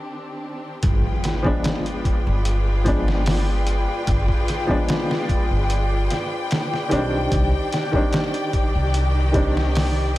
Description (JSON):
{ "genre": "trip hop", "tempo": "74 BPM", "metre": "4/4", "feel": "straight", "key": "unclear", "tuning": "A4 = 440 Hz", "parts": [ { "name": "rich studio string section", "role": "sustained chords", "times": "0.0-10.2 s", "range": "Eb3 to G5", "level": "-27 LUFS", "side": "left 2 dB", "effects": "none" }, { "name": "upright bass", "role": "bass", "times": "0.8-10.2 s", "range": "G1 to C2", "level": "-21 LUFS", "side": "equal", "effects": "none" }, { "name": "trip hop sampler-style drum kit", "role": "drums", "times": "0.8-10.0 s", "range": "hi-hat, kick drum, snare drum", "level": "-23 LUFS", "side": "equal", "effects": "overdrive, high-pass filter on hats, high-pass filter on snare, high-pass filter on kick" }, { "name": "impact", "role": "sound effects", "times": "0.8-4.1 s", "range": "none", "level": "-28 LUFS", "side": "equal", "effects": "none" }, { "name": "wind-like tuned noise texture", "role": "texture", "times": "1.2-10.2 s", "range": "D5", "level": "-35 LUFS", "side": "right 4 dB", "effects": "built-in reverb" }, { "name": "felt-muted upright piano", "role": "accompaniment", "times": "1.4-10.2 s", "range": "Eb3 to D4", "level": "-25 LUFS", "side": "equal", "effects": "tremolo, tape echo" } ], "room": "studio ambience", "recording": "none", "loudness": "-18 LUFS", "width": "side -16 dB against mid", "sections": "0.8-10.2 A section", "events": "break 0.0-0.8; impact 0.8-4.1", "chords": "0.0 Cmadd9; 0.8 G7b9", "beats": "0.02 | 0.83 1.64 2.45 3.26 | 4.07 4.88 5.70 6.51 | 7.32 8.13 8.94 9.75" }